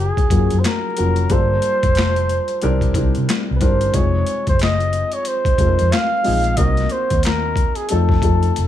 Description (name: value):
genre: R&B, neo-soul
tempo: 91 BPM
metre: 4/4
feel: swing 61% on 16ths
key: unclear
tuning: A4 = 440 Hz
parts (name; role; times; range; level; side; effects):
- breathy flugelhorn; melody; 0.0-8.7 s; Ab4 to F5; -20 LUFS; equal; plate reverb
- dark upright piano; accompaniment; 0.0-8.7 s; C3 to Bb4; -24 LUFS; left 2 dB; plate reverb
- vintage muted fingered electric bass; bass; 0.0-8.7 s; F1 to C3; -18 LUFS; left 1 dB; none
- boom bap sampler-style drum kit; drums; 0.2-8.7 s; handclaps, hi-hat, kick drum, snare drum; -20 LUFS; left 1 dB; overdrive
room: light reverb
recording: none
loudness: -15 LUFS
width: side -11 dB against mid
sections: 0.0-8.7 A section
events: none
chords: 0.0 Gbmaj9; 1.3 Gm7; 2.6 C7; 3.9 Fm7; 6.6 Cm7b5; 7.9 F7